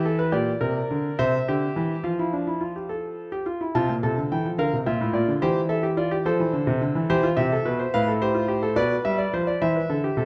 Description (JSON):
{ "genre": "classical, baroque-style 3-part fugue for grand piano", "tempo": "71 BPM (dotted quarters)", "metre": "6/8", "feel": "straight", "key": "F major", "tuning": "A4 = 435 Hz", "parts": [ { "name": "clear concert grand piano", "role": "solo", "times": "0.0-10.3 s", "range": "A2 to A5", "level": "-24 LUFS", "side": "equal", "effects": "none" } ], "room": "moderate recital hall reverb, RT60 1.7 s", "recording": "none", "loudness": "-24 LUFS", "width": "mono", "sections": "0.3-3.7 A section; 3.7-10.3 B section", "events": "none", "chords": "0.3 Gm/Bb; 1.2 C; 2.0 F; 4.6 Bb; 5.4 C/E; 6.3 F; 7.1 C; 7.9 F/A; 8.8 G/B; 9.6 C", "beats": "| 0.34 1.19 | 2.04 2.89 | 3.75 4.59 | 5.42 6.25 | 7.09 7.93 | 8.77 9.61" }